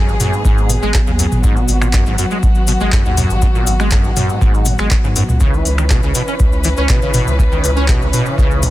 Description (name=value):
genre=acid house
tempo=121 BPM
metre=4/4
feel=straight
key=G# minor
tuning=A4 = 441 Hz
part: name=dark chamber string section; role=sustained chords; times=0.0-8.7 s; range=E3 to B4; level=-21 LUFS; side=left 1 dB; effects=sidechain pumping
part: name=acid bass, saw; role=riff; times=0.0-8.7 s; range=F#2 to C#4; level=-20 LUFS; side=equal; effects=tube saturation, ensemble chorus, tape echo
part: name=saturated sub bass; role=bass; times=0.0-8.7 s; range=G#1 to G#2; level=-18 LUFS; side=equal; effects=sidechain pumping
part: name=cabasa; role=percussion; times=0.1-8.7 s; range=none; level=-27 LUFS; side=left 6 dB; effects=none
part: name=booming analog drum machine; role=drums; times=0.2-8.7 s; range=finger snaps, handclaps, hi-hat, toms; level=-20 LUFS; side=equal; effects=none
part: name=electronic kick drum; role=drums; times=0.4-8.5 s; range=none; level=-15 LUFS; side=equal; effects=none
room=little or no reverb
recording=dense, heavily limited modern master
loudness=-12 LUFS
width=side -16 dB against mid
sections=0.0-8.7 A section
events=none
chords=0.0 G#m7; 5.4 C#m7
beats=0.45 0.94 | 1.44 1.94 2.43 2.93 | 3.42 3.92 4.41 4.91 | 5.41 5.90 6.40 6.89 | 7.39 7.88 8.38